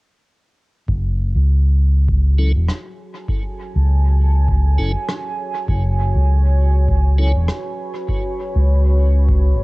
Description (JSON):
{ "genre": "ambient dub", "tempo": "100 BPM", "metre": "4/4", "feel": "swing 57% on 16ths", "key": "F# minor", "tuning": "A4 = 440 Hz", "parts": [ { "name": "deep dark ambient pad", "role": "sustained chords", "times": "2.5-9.6 s", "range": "F#4 to B5", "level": "-27 LUFS", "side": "right 1 dB", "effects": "chorus, built-in reverb" }, { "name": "fingered electric bass", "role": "bass", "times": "0.9-9.6 s", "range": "E1 to C#2", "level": "-14 LUFS", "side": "equal", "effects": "none" }, { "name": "electronic kick drum", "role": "drums", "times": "0.9-9.4 s", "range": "none", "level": "-22 LUFS", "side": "equal", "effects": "none" }, { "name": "tonewheel organ", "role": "stabs", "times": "2.4-7.3 s", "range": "F#3 to A4", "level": "-29 LUFS", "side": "left 1 dB", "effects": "slow rotary speaker, dub echo" }, { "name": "rim click", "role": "drums", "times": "2.7-7.6 s", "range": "none", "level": "-29 LUFS", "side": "left 1 dB", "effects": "dub echo" } ], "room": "small room ambience", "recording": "home recording on cassette", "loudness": "-15 LUFS", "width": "side -23 dB against mid", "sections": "0.9-9.6 A section", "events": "none", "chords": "0.9 F#m" }